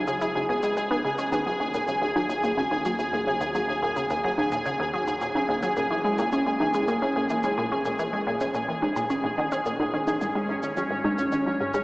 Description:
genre	ambient, sequencer-driven space music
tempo	108 BPM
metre	4/4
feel	straight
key	unclear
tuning	A4 = 440 Hz
part	resonant blip pluck	riff	0.0-11.8 s	D#2 to E4	-27 LUFS	equal	phaser, cassette tape, tape echo, shimmer reverb
part	warm sub bass	bass	0.0-11.8 s	G#1 to D#2	-48 LUFS	equal	none
part	pulsing gated texture	texture	0.0-11.8 s	C#4 to G#5	-26 LUFS	equal	chorus, built-in reverb, shimmer reverb
part	cabasa and congas	percussion	0.1-11.8 s	none	-34 LUFS	equal	tape echo
room	wet cathedral reverb, RT60 5.8 s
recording	dreamy mix soaked in reverb, AM radio sound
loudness	-23 LUFS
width	side -23 dB against mid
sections	0.0-11.8 A section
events	none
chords	0.0 C#5; 1.3 D#m; 5.8 A#m; 10.2 G#5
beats	0.21 0.77 | 1.32 1.88 2.44 2.99 | 3.55 4.10 4.66 5.21 | 5.77 6.33 6.88 7.44 | 7.99 8.55 9.10 9.66 | 10.21 10.77 11.32

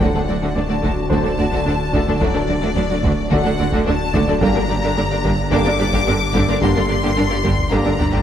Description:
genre	cinematic, hybrid orchestral and electronic film score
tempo	109 BPM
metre	4/4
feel	straight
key	G harmonic minor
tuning	A4 = 440 Hz
part	rich symphonic violin section	melody	0.0-8.2 s	D5 to D6	-25 LUFS	left 5 dB	none
part	rich symphonic violin section	second line	0.0-8.2 s	A3 to D5	-26 LUFS	left 3 dB	none
part	rich studio viola section	accompaniment	0.0-8.2 s	D3 to D4	-24 LUFS	right 1 dB	none
part	clear trombone section	sustained chords	0.0-7.9 s	D3 to Bb3	-30 LUFS	right 2 dB	none
part	hollow soft pad	sustained chords	0.0-8.2 s	D3 to D5	-26 LUFS	left 1 dB	chorus
part	mellow French horn section	sustained chords	0.0-7.9 s	D4 to A4	-29 LUFS	left 4 dB	none
part	tight sequenced synth	arpeggios	0.0-8.2 s	D3 to G4	-27 LUFS	right 1 dB	none
part	detuned saw bass	bass	0.0-8.2 s	D1 to G1	-26 LUFS	equal	none
part	rich symphonic cello section	bass	0.0-8.2 s	D2 to G2	-24 LUFS	right 2 dB	none
part	rich symphonic double bass section	bass	0.0-8.1 s	G1 to D2	-25 LUFS	right 3 dB	none
part	solo taiko drums	drums	0.0-8.2 s	none	-25 LUFS	equal	none
part	bright concert grand piano	texture	0.0-8.2 s	C5 to D5	-34 LUFS	left 1 dB	none
room	moderate scoring stage reverb, RT60 2.1 s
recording	none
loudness	-15 LUFS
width	side -9 dB against mid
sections	0.0-8.2 A section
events	none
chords	0.0 D; 4.4 Gm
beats	| 0.01 0.56 1.11 1.66 | 2.21 2.76 3.31 3.86 | 4.41 4.96 5.51 6.07 | 6.62 7.17 7.72

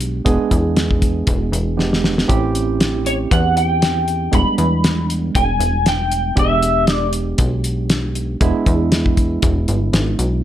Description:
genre	straight-eighth soul blues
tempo	118 BPM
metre	4/4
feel	swing 55% on 16ths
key	E mixolydian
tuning	A4 = 440 Hz
part	barky tine electric piano	accompaniment	0.0-10.4 s	G3 to G#4	-22 LUFS	right 5 dB	medium stereo tremolo
part	plucky analog bass	bass	0.0-10.4 s	E1 to E2	-20 LUFS	left 1 dB	none
part	cloth-damped thuddy drum kit	drums	0.0-10.3 s	hi-hat, kick drum, snare drum	-18 LUFS	left 1 dB	none
part	electric guitar through a small old amp	melody	3.1-7.1 s	C#5 to B5	-19 LUFS	equal	analog chorus
room	light reverb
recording	none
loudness	-15 LUFS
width	side -12 dB against mid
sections	0.0-10.4 A section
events	drum fill 1.8-2.3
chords	0.0 E7#9; 2.3 A7#9; 4.3 E7#9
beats	| 0.25 0.76 1.27 1.78 | 2.29 2.80 3.31 3.82 | 4.33 4.84 5.35 5.86 | 6.37 6.88 7.39 7.90 | 8.41 8.92 9.43 9.93

